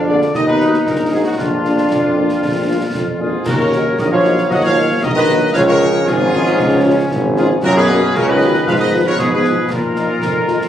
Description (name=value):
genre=military-style march for wind band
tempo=115 BPM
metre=2/4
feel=straight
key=Eb minor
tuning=A4 = 440 Hz
part: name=clear trombone section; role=sustained chords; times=0.0-10.6 s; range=F3 to Eb4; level=-20 LUFS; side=equal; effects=none
part: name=warm tuba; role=bass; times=0.0-10.7 s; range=Ab1 to Bb2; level=-18 LUFS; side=right 1 dB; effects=none
part: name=dark trumpet section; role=melody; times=0.1-10.7 s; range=F4 to Gb5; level=-22 LUFS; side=left 1 dB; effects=none
part: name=warm euphonium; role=second line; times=0.1-10.7 s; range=F2 to Gb3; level=-20 LUFS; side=right 2 dB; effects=none
part: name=warm woodwind section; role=second line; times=0.1-10.7 s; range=F4 to Eb5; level=-20 LUFS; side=left 2 dB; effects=none
part: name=mellow French horn section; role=accompaniment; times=0.1-10.6 s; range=F3 to Ab4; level=-22 LUFS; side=left 5 dB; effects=none
part: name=concert snare drum, concert bass drum and clash cymbals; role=drums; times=0.2-10.7 s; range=none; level=-27 LUFS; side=left 1 dB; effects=none
room=moderate large studio reverb, RT60 1.2 s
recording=recorded on a phone in the room, club reverb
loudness=-12 LUFS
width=side -10 dB against mid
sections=0.0-3.5 A section; 3.5-10.7 B section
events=none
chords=0.3 Ebm; 1.4 Bb; 3.5 Ebm; 5.5 Db; 7.6 Gb; 8.7 Fdim/Ab; 9.7 Bbsus4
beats=| 0.34 0.86 | 1.38 1.90 | 2.42 2.94 | 3.46 3.98 | 4.50 5.02 | 5.54 6.07 | 6.58 7.11 | 7.63 8.15 | 8.67 9.19 | 9.71 10.23